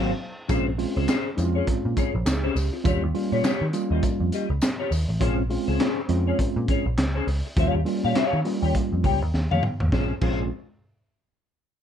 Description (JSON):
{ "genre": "funk", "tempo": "102 BPM", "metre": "4/4", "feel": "swing 60% on 16ths", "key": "Bb dorian", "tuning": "A4 = 443 Hz", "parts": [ { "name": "clean electric guitar", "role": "accompaniment", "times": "0.0-10.4 s", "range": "Db4 to G5", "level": "-28 LUFS", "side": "left 5 dB", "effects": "ensemble chorus" }, { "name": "mellow tine electric piano", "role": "stabs", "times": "0.0-10.5 s", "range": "Gb3 to Ab4", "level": "-28 LUFS", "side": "right 2 dB", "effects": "medium stereo tremolo" }, { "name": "vintage muted picked electric bass", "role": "bass", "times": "0.0-10.5 s", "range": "Ab1 to Eb3", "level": "-25 LUFS", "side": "equal", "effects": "none" }, { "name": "crunchy breakbeat drum kit", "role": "drums", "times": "0.5-10.4 s", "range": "crash cymbal, handclaps, hi-hat, kick drum, snare drum, toms", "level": "-27 LUFS", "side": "equal", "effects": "none" }, { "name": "tambourine", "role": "percussion", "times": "0.5-5.1 s", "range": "none", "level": "-40 LUFS", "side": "left 4 dB", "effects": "none" } ], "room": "light reverb", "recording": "dark, warm production", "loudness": "-22 LUFS", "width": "side -9 dB against mid", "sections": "0.5-9.9 A section; 9.9-11.8 B section", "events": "band accent 0.0-0.5; drum fill 9.3-9.9", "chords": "0.5 Bbm9; 2.8 Eb9; 5.2 Bbm9; 7.6 Eb9; 9.9 Bbm9" }